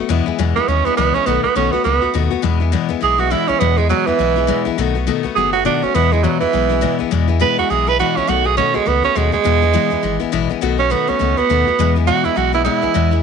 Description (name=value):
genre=rockabilly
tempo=205 BPM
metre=4/4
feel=swing 59% on 8ths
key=E major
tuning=A4 = 439 Hz
part: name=picked steel-string acoustic guitar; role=accompaniment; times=0.0-13.2 s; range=E2 to F#4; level=-19 LUFS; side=left 12 dB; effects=none
part: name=sub bass with octave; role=bass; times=0.0-13.2 s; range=F#1 to E2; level=-20 LUFS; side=left 1 dB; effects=none
part: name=raspy tenor saxophone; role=melody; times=0.6-13.2 s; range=E3 to B4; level=-16 LUFS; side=right 10 dB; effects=slapback echo
room=light reverb, studio ambience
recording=1960s-style stereo with parts hard left and right, nothing above 10.6 kHz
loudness=-14 LUFS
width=side -6 dB against mid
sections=0.0-7.1 A section; 7.1-13.2 A section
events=tenor saxophone solo 0.0-13.2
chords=0.1 E; 1.3 B7; 2.4 E; 4.8 B7; 5.9 E; 8.3 B7; 9.5 E; 10.6 B7; 11.8 E